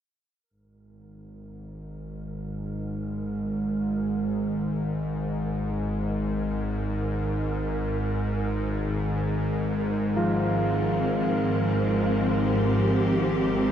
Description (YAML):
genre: dark ambient drone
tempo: free time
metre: none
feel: none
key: unclear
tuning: A4 = 438 Hz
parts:
  - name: wind-like tuned noise texture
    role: texture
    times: 1.4-13.7 s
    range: A#4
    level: -36 LUFS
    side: right 4 dB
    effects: built-in reverb
  - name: bowed-like drone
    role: drone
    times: 1.3-13.7 s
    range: Ab1 to Ab2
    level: -26 LUFS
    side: equal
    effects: built-in reverb
  - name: rich symphonic cello section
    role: sustained chords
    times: 10.2-13.7 s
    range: F3 to G4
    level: -27 LUFS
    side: equal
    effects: none
  - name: old church bells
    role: arpeggios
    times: 10.2-13.7 s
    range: F4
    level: -29 LUFS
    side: equal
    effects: diffuse ambient delay
room: wet huge ambient reverb, RT60 7.2 s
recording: in a vast, echoing space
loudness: -24 LUFS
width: side -9 dB against mid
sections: 0.5-13.7 A section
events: fade-in on synth texture 0.5-13.7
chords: 0.5 Fm